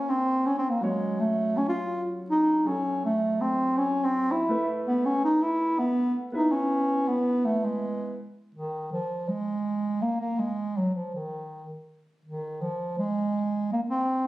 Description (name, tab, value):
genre	progressive instrumental, progressive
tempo	163 BPM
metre	5/4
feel	straight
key	unclear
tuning	A4 = 440 Hz
part	mellow bass clarinet	melody	0.0-14.2 s	Eb3 to F4	-25 LUFS	equal	none
part	dark baby grand piano	accompaniment	0.0-8.1 s	Gb3 to E5	-33 LUFS	equal	none
room	moderate studio reverb, RT60 0.5 s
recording	recorded on a phone in the room, studio reverb, compression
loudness	-24 LUFS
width	side -17 dB against mid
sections	0.0-8.2 A section; 8.2-14.3 B section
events	bass clarinet solo 0.0-8.2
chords	0.0 Bbmadd9; 0.8 Gbm; 4.5 Asus2; 8.2 N.C.